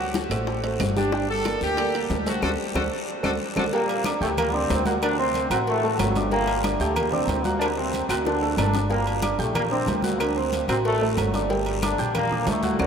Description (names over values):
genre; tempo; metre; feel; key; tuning
latin, salsa; 185 BPM; 4/4; straight; G harmonic minor; A4 = 441 Hz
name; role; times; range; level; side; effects
brilliant horn section; melody; 0.0-3.7 s; D4 to A4; -30 LUFS; equal; ping-pong delay
clear upright piano; accompaniment; 0.0-12.9 s; F#3 to G6; -27 LUFS; right 2 dB; lush chorus
upright bass; bass; 0.0-12.9 s; G1 to D2; -29 LUFS; equal; none
bongos and cowbell; percussion; 0.1-12.9 s; none; -32 LUFS; left 3 dB; none
congas; percussion; 0.1-12.9 s; none; -32 LUFS; left 2 dB; none
guiro; percussion; 0.1-12.9 s; none; -39 LUFS; left 6 dB; none
timbales and agogo bells; percussion; 0.2-12.9 s; none; -33 LUFS; right 6 dB; none
claves; percussion; 0.3-12.9 s; none; -40 LUFS; left 6 dB; none
mellow trombone section; melody; 3.7-12.9 s; F#2 to D4; -26 LUFS; equal; ping-pong delay
room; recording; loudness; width
wet cathedral reverb, RT60 7.1 s; dreamy mix soaked in reverb; -21 LUFS; side -7 dB against mid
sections
0.0-3.7 A section; 3.7-12.9 B section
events
drum fill 2.4-3.7, 8.3-8.9; band accent 2.4-3.7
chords
0.0 D7; 1.1 Gmadd9; 2.4 D7; 3.7 Gm; 5.0 D7; 6.3 Gmadd9; 7.6 D7; 8.9 Gmadd9; 10.2 D7; 11.5 Gmadd9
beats
0.15 0.47 0.80 | 1.12 1.45 1.78 2.10 | 2.43 2.75 3.08 3.40 | 3.73 4.05 4.38 4.70 | 5.02 5.35 5.67 5.99 | 6.32 6.64 6.96 7.29 | 7.61 7.93 8.26 8.58 | 8.91 9.23 9.55 9.88 | 10.20 10.53 10.85 11.17 | 11.50 11.82 12.15 12.47 | 12.80